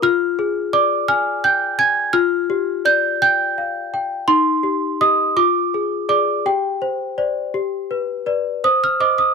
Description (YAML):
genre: classical, lullaby for celesta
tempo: 56 BPM (dotted quarters)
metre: 6/8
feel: straight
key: unclear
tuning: A4 = 440 Hz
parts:
  - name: worn celesta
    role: solo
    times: 0.0-9.3 s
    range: Eb4 to Ab6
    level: -16 LUFS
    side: equal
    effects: none
room: small room reverb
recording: dry, close 1970s-style studio recording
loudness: -16 LUFS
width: side -5 dB against mid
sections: 0.0-8.6 A section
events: none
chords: 0.0 Ddim/F; 2.2 G5/F; 4.3 Cm/Eb; 5.4 Ddim/F; 6.5 Gsus4; 7.5 G; 8.6 Cm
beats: | 0.04 1.10 | 2.15 3.21 | 4.28 5.36 | 6.45 7.55 | 8.64